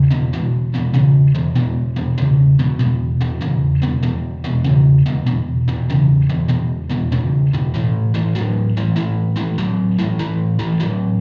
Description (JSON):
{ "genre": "rock", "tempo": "97 BPM", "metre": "4/4", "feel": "swing 66% on 8ths", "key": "unclear", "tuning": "A4 = 440 Hz", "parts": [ { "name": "overdriven electric guitar", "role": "solo", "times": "0.0-11.2 s", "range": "E2 to F#3", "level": "-17 LUFS", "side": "equal", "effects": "tape echo" } ], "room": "light reverb, digital ambience", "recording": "live gig heard through the venue's PA, club reverb", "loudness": "-17 LUFS", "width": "mono", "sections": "0.0-11.2 A section", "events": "none", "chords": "0.0 E5; 7.7 A5", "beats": "| 0.33 0.94 1.56 2.18 | 2.79 3.41 4.03 4.65 | 5.26 5.88 6.50 7.12 | 7.74 8.35 8.97 9.59 | 10.21 10.82" }